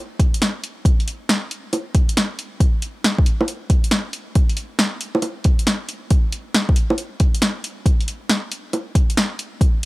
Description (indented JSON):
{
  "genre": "future garage",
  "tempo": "137 BPM",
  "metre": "4/4",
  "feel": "swing 66% on 16ths",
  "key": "none",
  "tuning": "none",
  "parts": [
    { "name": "deep house drum kit", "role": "drums", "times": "0.2-9.9 s", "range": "bongos, hi-hat, snare drum", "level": "-20 LUFS", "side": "equal", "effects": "none" },
    { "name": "electronic kick drum", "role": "drums", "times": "0.2-9.7 s", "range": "none", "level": "-16 LUFS", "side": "equal", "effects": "none" }
  ],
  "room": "little or no reverb",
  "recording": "dry, gritty hardware recording",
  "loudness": "-18 LUFS",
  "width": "side -21 dB against mid",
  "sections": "0.0-9.9 A section",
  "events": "none",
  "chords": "none"
}